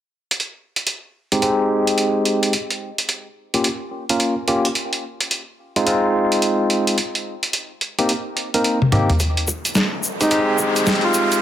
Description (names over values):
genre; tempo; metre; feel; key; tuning
glitch hop; 108 BPM; 4/4; swing 63% on 16ths; unclear; A4 = 438 Hz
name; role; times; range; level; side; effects
boom bap sampler-style drum kit; drums; 0.3-11.4 s; hi-hat, snare drum, toms; -20 LUFS; equal; small room ambience
barky tine electric piano; stabs; 1.3-11.4 s; Ab3 to Bb4; -19 LUFS; equal; medium stereo tremolo, vintage 12-bit sampler grit, sidechain pumping, low-pass filter, tape echo
electronic kick drum; drums; 9.2-10.7 s; none; -31 LUFS; equal; high-pass filter on kick, small room ambience
egg shaker; percussion; 9.2-11.4 s; none; -25 LUFS; left 2 dB; none
riser; sound effects; 9.6-11.4 s; none; -25 LUFS; equal; none
mellow tenor saxophone; melody; 10.2-11.4 s; Eb4 to F4; -20 LUFS; right 1 dB; low-pass filter
room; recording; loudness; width
moderate plate reverb, RT60 1.3 s; dense, heavily limited modern master; -18 LUFS; side -11 dB against mid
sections
0.3-9.2 A section; 9.2-11.4 B section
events
drum fill 8.8-9.2; build-up 9.2-11.4; riser 9.6-11.4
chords
0.3 Abmaj7; 2.5 Bbm6; 4.8 Ab6; 7.0 Cm7; 9.2 Abmaj7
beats
| 0.31 0.87 1.42 1.98 | 2.54 3.09 3.65 4.20 | 4.76 5.31 5.87 6.42 | 6.98 7.54 8.09 8.65 | 9.20 9.76 10.31 10.87